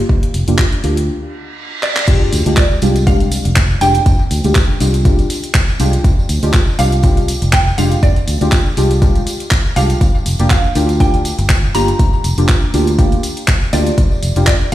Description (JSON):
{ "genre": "deep house", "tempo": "121 BPM", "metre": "4/4", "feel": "swing 55% on 16ths", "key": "F dorian", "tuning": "A4 = 441 Hz", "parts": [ { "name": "mallet-like synth pluck", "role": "melody", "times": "0.0-14.7 s", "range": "D5 to Bb5", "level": "-21 LUFS", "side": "right 2 dB", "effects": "ensemble chorus, dub echo" }, { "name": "fingered electric bass", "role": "bass", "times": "0.1-14.7 s", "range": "F1 to D2", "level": "-16 LUFS", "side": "equal", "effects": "sidechain pumping" }, { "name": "electronic kick drum", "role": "drums", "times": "0.1-14.6 s", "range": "none", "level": "-13 LUFS", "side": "equal", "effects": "overdrive" }, { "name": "deep house drum kit", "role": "drums", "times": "0.2-14.7 s", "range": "crash cymbal, handclaps, hi-hat", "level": "-21 LUFS", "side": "equal", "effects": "overdrive" }, { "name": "deep mellow chord stab", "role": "stabs", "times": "0.5-14.7 s", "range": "Ab3 to G4", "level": "-19 LUFS", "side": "equal", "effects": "chorus, dub echo" }, { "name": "reverse cymbal and sub drop", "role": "sound effects", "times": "1.4-4.1 s", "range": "none", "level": "-23 LUFS", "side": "right 1 dB", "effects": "none" }, { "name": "tambourine", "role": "percussion", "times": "2.1-14.7 s", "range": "none", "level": "-29 LUFS", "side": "right 4 dB", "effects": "none" } ], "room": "light reverb, digital ambience", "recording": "played on a big sound system in a bare room, stone room reverb", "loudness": "-11 LUFS", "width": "side -14 dB against mid", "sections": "0.0-2.1 A section; 2.1-14.7 B section", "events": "break 1.1-2.1; reverse cymbal 1.4-2.1; drum fill 1.8; drop 2.1-14.7; impact 2.1-4.1", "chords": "0.0 Gm7; 2.1 Fm69; 10.0 Gm7", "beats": "| 0.09 0.59 1.08 1.58 | 2.08 2.57 3.07 3.56 | 4.06 4.56 5.05 5.55 | 6.04 6.54 7.04 7.53 | 8.03 8.52 9.02 9.52 | 10.01 10.51 11.00 11.50 | 11.99 12.49 12.99 13.48 | 13.98 14.47" }